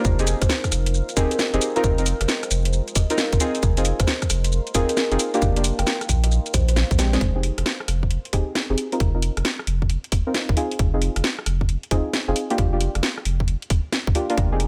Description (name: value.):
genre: UK garage, two-step garage.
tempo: 134 BPM.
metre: 4/4.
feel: swing 65% on 16ths.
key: F dorian.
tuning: A4 = 440 Hz.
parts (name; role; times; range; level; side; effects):
deep mellow chord stab; stabs; 0.0-14.6 s; Ab3 to Bb4; -28 LUFS; equal; chorus, cassette tape, digital delay.
saturated sub bass; bass; 0.0-14.7 s; Eb1 to Bb1; -24 LUFS; equal; none.
electronic kick drum; drums; 0.0-14.5 s; none; -25 LUFS; equal; studio reverb.
garage drum kit; drums; 0.0-14.7 s; hi-hat, rim click, shaker, snare drum; -28 LUFS; equal; studio reverb.
deep dark ambient pad; texture; 0.0-7.2 s; Eb4 to C6; -39 LUFS; equal; none.
kalimba; melody; 0.4-7.2 s; Bb4 to G5; -31 LUFS; equal; digital delay.
room: digital ambience.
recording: none.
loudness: -22 LUFS.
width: mono.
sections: 0.0-7.2 A section; 7.2-14.7 B section.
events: drop 0.0-7.2; drum fill 7.0.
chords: 0.0 Fm9; 3.4 Bb7sus4/F; 5.2 Ebmaj7/F; 6.3 Bb13; 7.2 Fm9; 8.8 Ebsus2; 10.6 Ab6; 12.4 Ebmaj7/F (rootless).